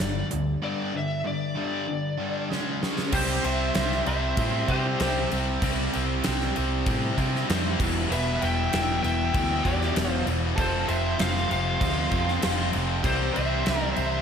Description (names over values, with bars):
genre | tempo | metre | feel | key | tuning
hard rock | 97 BPM | 4/4 | straight | unclear | A4 = 441 Hz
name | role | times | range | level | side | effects
lead guitar through a small cranked amp | melody | 0.0-14.2 s | C5 to G5 | -30 LUFS | left 2 dB | overdrive, slapback echo
biting overdriven guitar | riff | 0.0-14.2 s | E2 to C#4 | -31 LUFS | left 9 dB | harmonic tremolo
tight distorted guitar | riff | 0.0-14.2 s | E2 to C#4 | -32 LUFS | right 9 dB | distortion, slapback echo
picked electric bass | bass | 0.0-14.2 s | E1 to C3 | -29 LUFS | equal | none
gated 80s drum kit | drums | 0.0-14.1 s | crash cymbal, hi-hat, kick drum, snare drum | -29 LUFS | equal | none
octave-fuzz lead guitar | second line | 3.1-14.2 s | G4 to E5 | -33 LUFS | right 4 dB | distortion, slapback echo
raw garage guitar | riff | 3.1-14.2 s | C3 to F4 | -34 LUFS | right 3 dB | overdrive, slapback echo
room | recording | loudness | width
moderate concert hall reverb, RT60 1.9 s, studio ambience | big arena sound | -23 LUFS | side -7 dB against mid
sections
0.0-3.1 A section; 3.1-14.2 B section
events
drum fill 2.5-3.1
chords
0.0 G5; 2.5 C#5; 3.1 C; 7.8 Em; 10.6 F; 13.1 C